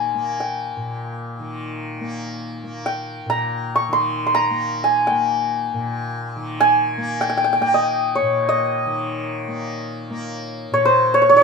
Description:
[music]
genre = indian classical, Hindustani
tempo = free time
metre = none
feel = none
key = Bb raga bageshri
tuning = A4 = 440 Hz
[part]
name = santur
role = melody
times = 0.0-11.4 s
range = C5 to Db6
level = -18 LUFS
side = equal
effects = none
[part]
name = tanpura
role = drone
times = 0.0-11.4 s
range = Bb2 to Bb3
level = -28 LUFS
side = left 1 dB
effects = none
[sound]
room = moderate small room ambience, RT60 0.5 s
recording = minimal, uncompressed stereo recording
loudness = -18 LUFS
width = side -4 dB against mid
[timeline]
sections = 0.0-11.4 A section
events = none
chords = none

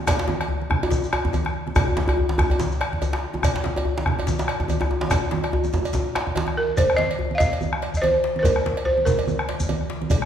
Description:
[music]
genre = west african traditional, West African drum ensemble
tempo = 144 BPM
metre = 4/4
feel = swing 56% on 16ths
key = unclear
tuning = A4 = 439 Hz
[part]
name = bombo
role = percussion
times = 0.1-10.3 s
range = none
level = -25 LUFS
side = equal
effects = none
[part]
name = congas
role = percussion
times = 0.1-10.2 s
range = none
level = -30 LUFS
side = right 5 dB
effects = none
[part]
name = cowbell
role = percussion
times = 0.1-10.2 s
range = none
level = -32 LUFS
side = right 3 dB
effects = none
[part]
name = djembe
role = percussion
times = 0.1-10.2 s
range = none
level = -29 LUFS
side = left 3 dB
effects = none
[part]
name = djembe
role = percussion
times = 0.1-6.5 s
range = none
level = -25 LUFS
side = equal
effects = none
[part]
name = shekere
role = percussion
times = 0.1-10.2 s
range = none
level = -34 LUFS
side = left 2 dB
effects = none
[part]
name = balafon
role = melody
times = 6.6-9.8 s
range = Bb4 to F5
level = -21 LUFS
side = right 1 dB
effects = none
[sound]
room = wet recital hall reverb, RT60 1.4 s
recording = recorded in a church or concert hall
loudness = -20 LUFS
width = side -9 dB against mid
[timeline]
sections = 0.0-6.8 A section; 6.8-10.3 B section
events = drum fill 5.1-6.8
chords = none

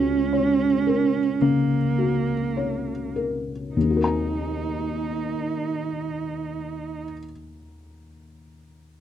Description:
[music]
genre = neoclassical piano and strings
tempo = 49-56 BPM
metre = 4/4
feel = rubato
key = Eb minor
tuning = A4 = 441 Hz
[part]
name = muted cello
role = second line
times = 0.0-7.0 s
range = Bb3 to Eb4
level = -25 LUFS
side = right 7 dB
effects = none
[part]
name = felt-muted upright piano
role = accompaniment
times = 0.0-9.0 s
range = Db2 to Bb5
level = -24 LUFS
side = left 4 dB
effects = none
[sound]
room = little or no reverb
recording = dry, close 1970s-style studio recording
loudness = -22 LUFS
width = side -10 dB against mid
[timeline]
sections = 0.0-3.8 A section; 3.8-8.6 B section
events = slowing down 0.0-3.8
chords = 0.0 Gb/Db; 3.8 Ebm

